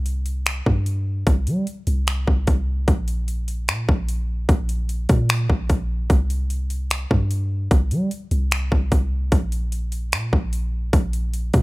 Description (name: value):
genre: hip hop, atmospheric cloud-rap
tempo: 149 BPM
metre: 4/4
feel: half-time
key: unclear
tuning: A4 = 439 Hz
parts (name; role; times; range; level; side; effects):
- soft 808-style bass; bass; 0.0-11.6 s; Bb1 to G3; -22 LUFS; equal; none
- trap drum kit; drums; 0.1-11.6 s; finger snaps, hi-hat, kick drum; -20 LUFS; equal; overdrive
room: little or no reverb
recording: none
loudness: -19 LUFS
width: side -21 dB against mid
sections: 0.0-11.6 A section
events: none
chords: none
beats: 0.06 0.46 0.86 | 1.27 1.67 2.07 2.47 | 2.88 3.28 3.68 4.08 | 4.49 4.89 5.29 5.70 | 6.10 6.50 6.90 7.31 | 7.71 8.11 8.52 8.92 | 9.32 9.72 10.12 10.53 | 10.93 11.33